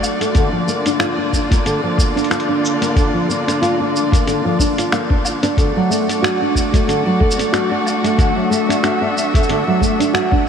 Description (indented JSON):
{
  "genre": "folktronica",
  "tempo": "92 BPM",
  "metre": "4/4",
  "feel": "swing 56% on 16ths",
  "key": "D major",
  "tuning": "A4 = 438 Hz",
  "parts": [
    { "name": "muted string quartet", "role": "sustained chords", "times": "0.0-10.5 s", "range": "D3 to E5", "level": "-20 LUFS", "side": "left 1 dB", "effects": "none" },
    { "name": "nylon-string guitar", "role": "arpeggios", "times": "0.0-10.5 s", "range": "D3 to F#4", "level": "-18 LUFS", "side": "right 1 dB", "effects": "wide subtle chorus, analog delay" },
    { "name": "lo-fi sampler-style drum kit", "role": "drums", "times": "0.0-10.3 s", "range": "finger snaps, hi-hat, shaker, woodblock", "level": "-24 LUFS", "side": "equal", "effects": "none" },
    { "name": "electronic kick drum", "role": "drums", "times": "0.3-10.4 s", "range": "none", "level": "-16 LUFS", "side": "equal", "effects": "none" }
  ],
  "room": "wet huge ambient reverb, RT60 7.8 s",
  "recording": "dreamy mix soaked in reverb",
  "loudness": "-14 LUFS",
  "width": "side -7 dB against mid",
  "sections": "0.0-10.5 A section",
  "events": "none",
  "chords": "0.4 Bb/D; 5.6 D"
}